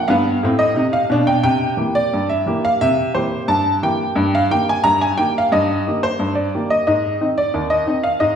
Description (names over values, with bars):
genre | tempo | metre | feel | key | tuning
ragtime piano | 88 BPM | 2/4 | straight | Eb major from 4.1 s | A4 = 440 Hz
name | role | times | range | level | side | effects
warm upright piano | solo | 0.0-8.4 s | Eb2 to Bb5 | -15 LUFS | equal | none
room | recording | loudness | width
wet recital hall reverb, RT60 1.7 s | recorded in a church or concert hall | -15 LUFS | side -8 dB against mid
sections
0.0-8.4 A section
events
none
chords
0.1 G; 1.4 C7; 4.1 Eb/G; 6.9 Ab